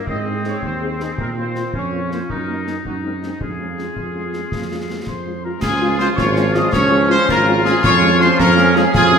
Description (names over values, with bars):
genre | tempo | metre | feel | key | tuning
military-style march for wind band | 108 BPM (dotted quarters) | 6/8 | straight | Db major | A4 = 441 Hz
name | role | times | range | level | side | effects
clear woodwind section | second line | 0.0-9.2 s | C4 to Ab4 | -22 LUFS | left 1 dB | none
dark trumpet section | melody | 0.1-9.2 s | F4 to Eb5 | -20 LUFS | left 1 dB | none
mellow tuba | bass | 0.1-9.2 s | Ab1 to Bb2 | -20 LUFS | right 3 dB | none
concert bass drum, concert snare drum and clash cymbals | drums | 0.1-9.1 s | none | -25 LUFS | left 1 dB | none
dark French horn section | accompaniment | 0.2-9.2 s | Ab3 to Ab4 | -25 LUFS | left 3 dB | none
mellow piccolo | second line | 5.1-9.2 s | Ab5 to Eb6 | -22 LUFS | left 3 dB | none
dark trombone section | sustained chords | 5.6-9.2 s | F3 to Db4 | -23 LUFS | right 1 dB | none
room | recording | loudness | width
wet scoring stage reverb, RT60 1.8 s | minimal, uncompressed stereo recording | -15 LUFS | side -6 dB against mid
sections
0.0-5.6 A section; 5.6-9.2 A section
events
none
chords
0.1 Ab; 1.2 Bbm; 2.3 Ebm/Gb; 2.9 Ab7/Gb; 3.4 Db/F; 5.6 Db; 7.8 Db/F